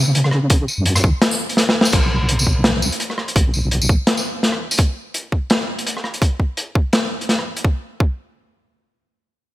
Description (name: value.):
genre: half-time drum and bass.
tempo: 168 BPM.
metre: 4/4.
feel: swing 55% on 16ths, half-time.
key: unclear.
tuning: A4 = 440 Hz.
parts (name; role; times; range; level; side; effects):
deep soft wobble bass; bass; 0.0-4.0 s; B1 to C#3; -18 LUFS; equal; chorus.
crunchy breakbeat drum kit; drums; 0.1-7.6 s; crash cymbal, hi-hat, rim click, snare drum, tambourine; -18 LUFS; equal; none.
electronic kick drum; drums; 0.5-8.1 s; none; -16 LUFS; equal; none.
room: light reverb.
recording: bright 1980s-style digital production.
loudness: -16 LUFS.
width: side -16 dB against mid.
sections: 0.0-1.9 A section; 1.9-7.6 B section; 7.6-9.5 C section.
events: drop 0.0-1.9; drum fill 1.6-1.9.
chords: none.